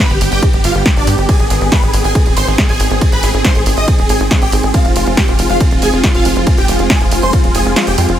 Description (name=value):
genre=uplifting trance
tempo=139 BPM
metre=4/4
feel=straight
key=unclear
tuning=A4 = 440 Hz
part: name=supersaw chords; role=melody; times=0.0-8.2 s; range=D4 to Eb6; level=-17 LUFS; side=right 1 dB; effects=phaser, ensemble chorus, sidechain pumping, digital delay
part: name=tight sequencer bass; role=bass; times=0.1-8.2 s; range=Eb1 to G2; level=-17 LUFS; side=equal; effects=sidechain pumping
part: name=techno drum kit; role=drums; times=0.1-8.2 s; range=hi-hat, ride cymbal, snare drum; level=-18 LUFS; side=equal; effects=none
part: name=electronic kick drum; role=drums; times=0.4-7.4 s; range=none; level=-13 LUFS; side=equal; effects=none
room=digital ambience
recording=none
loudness=-10 LUFS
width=side -11 dB against mid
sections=0.0-8.2 A section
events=drop 0.0-8.2; kick drops out 7.8-8.2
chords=0.0 G; 1.3 Ab; 4.7 Fm